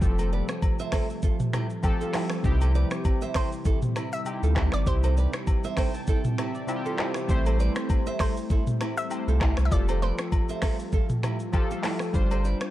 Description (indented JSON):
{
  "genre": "afrobeats",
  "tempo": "99 BPM",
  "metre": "4/4",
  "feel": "swing 55% on 16ths",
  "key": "C major",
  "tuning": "A4 = 437 Hz",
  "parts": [
    { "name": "analog pluck", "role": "melody", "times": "0.0-10.9 s", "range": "A4 to E5", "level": "-35 LUFS", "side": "equal", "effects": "chorus, tape echo" },
    { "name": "warm analog keys", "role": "accompaniment", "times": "0.0-12.7 s", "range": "C3 to A5", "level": "-32 LUFS", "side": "left 1 dB", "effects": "chorus" },
    { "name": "ethereal airy pad", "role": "sustained chords", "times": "0.1-12.7 s", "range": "E3 to F4", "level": "-36 LUFS", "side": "right 1 dB", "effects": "ensemble chorus, built-in reverb, phaser, sidechain pumping" },
    { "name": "warm sub bass", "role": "bass", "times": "0.0-12.5 s", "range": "F1 to D2", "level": "-24 LUFS", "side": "equal", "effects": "none" },
    { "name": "afro-pop drum kit", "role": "drums", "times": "0.0-12.7 s", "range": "finger snaps, handclaps, hi-hat, kick drum, rim click, shaker, toms", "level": "-26 LUFS", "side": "equal", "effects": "vintage 12-bit sampler grit" },
    { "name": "flamenco guitar", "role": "riff", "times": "0.2-12.6 s", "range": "E4 to E5", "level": "-35 LUFS", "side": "right 6 dB", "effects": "tape echo" },
    { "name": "agogo bells and woodblock", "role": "percussion", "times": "0.2-12.4 s", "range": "none", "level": "-40 LUFS", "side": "left 6 dB", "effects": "none" }
  ],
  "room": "digital ambience",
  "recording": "dark, warm production",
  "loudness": "-23 LUFS",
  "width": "side -14 dB against mid",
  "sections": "0.0-12.1 A section",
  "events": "synth keys fill 5.5-7.3",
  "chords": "0.0 Fadd9; 2.4 C; 7.3 Am7; 9.7 Fadd9; 12.1 G7sus4"
}